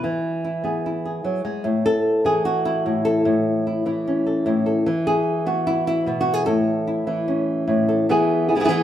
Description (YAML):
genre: flamenco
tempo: 149 BPM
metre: 4/4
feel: straight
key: A major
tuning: A4 = 441 Hz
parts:
  - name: flamenco guitar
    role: solo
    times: 0.0-8.8 s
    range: A2 to B4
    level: -19 LUFS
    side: equal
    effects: none
room: moderate stone room reverb, RT60 1.1 s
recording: band playing live in one room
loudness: -19 LUFS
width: side -11 dB against mid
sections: 0.0-8.1 A section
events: none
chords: 0.0 E; 1.6 A; 4.9 E; 6.5 A; 8.1 E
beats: | 0.03 0.43 0.84 1.24 | 1.64 2.05 2.45 2.85 | 3.25 3.66 4.06 4.46 | 4.87 5.27 5.67 6.07 | 6.47 6.88 7.28 7.68 | 8.09 8.49